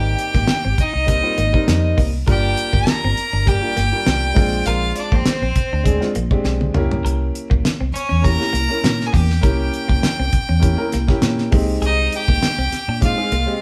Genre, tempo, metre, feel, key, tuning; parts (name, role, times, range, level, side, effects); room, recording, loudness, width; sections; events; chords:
electric jazz fusion; 100 BPM; 4/4; swing 54% on 16ths; A4 = 440 Hz
clear violin; melody; 0.0-13.6 s; C5 to Bb5; -25 LUFS; equal
biting overdriven guitar; second line; 0.0-13.6 s; C4 to Bb4; -30 LUFS; equal
clear grand piano; accompaniment; 0.0-13.6 s; G3 to Eb5; -27 LUFS; equal
clean electric guitar; stabs; 0.0-13.5 s; Bb3 to Bb4; -32 LUFS; equal
vintage muted fingered electric bass; bass; 0.0-13.5 s; G1 to Bb2; -23 LUFS; equal
damped 70s drum kit; drums; 0.2-13.5 s; hi-hat, kick drum, snare drum, toms; -21 LUFS; equal
moderate studio reverb, RT60 0.8 s; band playing live in one room; -18 LUFS; mono
0.0-13.6 A section
drum fill 6.5-7.0
0.0 Abmaj9; 2.3 Gm7; 4.4 Bb9; 6.7 C7b9; 11.5 Fm9/C